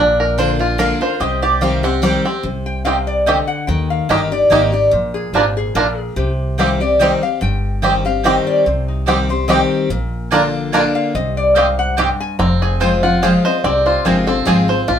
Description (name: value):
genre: bluegrass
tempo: 145 BPM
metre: 3/4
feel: swing 54% on 8ths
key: C minor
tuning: A4 = 441 Hz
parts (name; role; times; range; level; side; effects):
- lap resonator guitar; second line; 0.0-14.8 s; Eb4 to Bb5; -18 LUFS; left 2 dB; none
- picked steel-string acoustic guitar; accompaniment; 0.0-15.0 s; F2 to G4; -19 LUFS; left 2 dB; none
- bluegrass banjo; arpeggios; 0.0-15.0 s; C4 to C5; -18 LUFS; right 2 dB; none
- upright bass; bass; 0.0-15.0 s; F1 to Eb2; -21 LUFS; equal; none
- mandolin; stabs; 0.8-14.6 s; Bb3 to Bb5; -20 LUFS; right 4 dB; none
room: moderate studio reverb, RT60 0.6 s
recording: band playing live in one room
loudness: -14 LUFS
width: side -8 dB against mid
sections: 0.0-2.4 A section; 2.4-12.4 A section; 12.4-15.0 A section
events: mandolin solo 0.0-2.4; resonator guitar played with a steel bar solo 2.4-15.0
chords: 0.0 Bb; 1.2 Cm; 3.7 Eb; 4.9 Bb; 6.2 Cm; 9.9 Bb; 11.1 Cm; 12.4 Fm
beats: 0.38 0.79 | 1.21 1.62 2.03 | 2.44 2.86 3.27 | 3.68 4.10 4.51 | 4.92 5.34 5.75 | 6.17 6.58 7.00 | 7.41 7.83 8.24 | 8.66 9.07 9.49 | 9.90 10.32 10.73 | 11.15 11.56 11.98 | 12.39 12.81 13.22 | 13.64 14.05 14.47 | 14.88